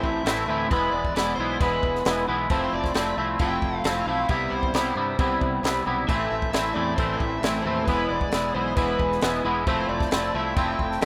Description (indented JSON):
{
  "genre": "indie rock",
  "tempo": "134 BPM",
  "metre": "4/4",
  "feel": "straight",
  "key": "A minor",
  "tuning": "A4 = 440 Hz",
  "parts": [
    { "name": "crunchy overdriven guitar", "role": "melody", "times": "0.0-11.1 s", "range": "B4 to G5", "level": "-32 LUFS", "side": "equal", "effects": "spring reverb" },
    { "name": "twangy electric guitar", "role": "riff", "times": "0.0-11.1 s", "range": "A2 to E4", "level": "-27 LUFS", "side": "equal", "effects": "analog chorus" },
    { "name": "modern bright fingered electric bass", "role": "bass", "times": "0.0-11.1 s", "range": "E1 to G2", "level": "-37 LUFS", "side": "equal", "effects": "none" },
    { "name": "compact cocktail drum kit", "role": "drums", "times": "0.0-11.1 s", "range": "crash cymbal, kick drum, snare drum", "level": "-31 LUFS", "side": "equal", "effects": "none" },
    { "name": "ensemble organ-string", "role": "sustained chords", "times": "6.1-11.1 s", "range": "E3 to A4", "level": "-42 LUFS", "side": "equal", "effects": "none" }
  ],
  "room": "light reverb, small room reverb",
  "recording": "rough home demo mix",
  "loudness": "-24 LUFS",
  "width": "mono",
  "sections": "0.0-11.1 A section",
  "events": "none",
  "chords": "0.0 Am; 0.7 E; 2.5 Fmaj7; 4.3 Cmaj7; 6.1 Am; 7.9 E; 9.7 Fmaj7",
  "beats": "0.26 | 0.71 1.16 1.60 2.05 | 2.50 2.95 3.39 3.84 | 4.29 4.74 5.19 5.63 | 6.08 6.53 6.98 7.43 | 7.88 8.32 8.77 9.22 | 9.67 10.12 10.57 11.01"
}